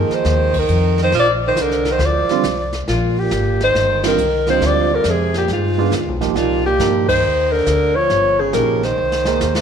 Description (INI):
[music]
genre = jazz, small-group swing and bop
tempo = 138 BPM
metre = 4/4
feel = swing 67% on 8ths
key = C minor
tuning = A4 = 437 Hz
[part]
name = breathy alto saxophone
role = melody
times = 0.0-9.6 s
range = F4 to D5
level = -17 LUFS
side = left 2 dB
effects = none
[part]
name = warm tenor saxophone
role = second line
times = 0.0-9.6 s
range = Ab2 to F3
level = -22 LUFS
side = right 8 dB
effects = none
[part]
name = dark upright piano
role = accompaniment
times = 0.0-9.6 s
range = D3 to Bb4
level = -21 LUFS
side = right 12 dB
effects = none
[part]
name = upright bass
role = bass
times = 0.0-9.6 s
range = G1 to G2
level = -21 LUFS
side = left 1 dB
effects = none
[part]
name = jazz brush drum kit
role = drums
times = 0.1-9.6 s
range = brushed snare drum, crash cymbal, hi-hat, kick drum, ride cymbal, snare drum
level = -27 LUFS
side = equal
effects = none
[sound]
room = moderate plate reverb, RT60 1.5 s, small room reverb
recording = 1960s-style stereo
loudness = -14 LUFS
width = side -7 dB against mid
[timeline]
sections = 0.0-9.6 A section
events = band accent 0.5, 4.0, 7.0; drum fill 9.0-9.6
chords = 0.0 Fm7; 1.1 Bbadd9; 2.9 Eb6; 4.6 Bb13/D; 5.5 G7b9; 6.4 Cm9; 8.1 Eb9/G; 9.0 Abadd9/C